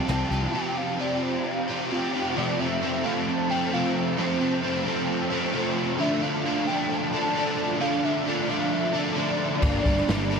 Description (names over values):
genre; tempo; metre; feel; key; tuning
rock, shoegaze and dream pop; 132 BPM; 4/4; straight; F major; A4 = 441 Hz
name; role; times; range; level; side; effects
warm velvety synth lead; melody; 0.0-10.4 s; C5 to A5; -31 LUFS; equal; chorus, ping-pong delay
overdriven electric guitar; riff; 0.0-10.4 s; F2 to G4; -24 LUFS; equal; ensemble chorus
fuzz picked electric bass; bass; 0.1-0.5, 9.6-10.4 s; G1 to C2; -28 LUFS; equal; overdrive
jazz brush drum kit; drums; 0.1-0.4, 9.6-10.4 s; crash cymbal, hi-hat, kick drum, snare drum; -27 LUFS; equal; none
room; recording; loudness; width
wet huge ambient reverb, RT60 6.2 s; dreamy mix soaked in reverb; -23 LUFS; side -5 dB against mid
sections
0.0-2.4 A section; 2.4-10.4 B section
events
none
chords
0.0 Csus4; 2.4 F; 6.0 Dmadd9; 9.6 Gm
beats
0.08 | 0.54 0.99 1.45 1.91 | 2.37 2.82 3.28 3.73 | 4.18 4.64 5.09 5.54 | 6.00 6.45 6.91 7.36 | 7.81 8.26 8.72 9.17 | 9.62 10.08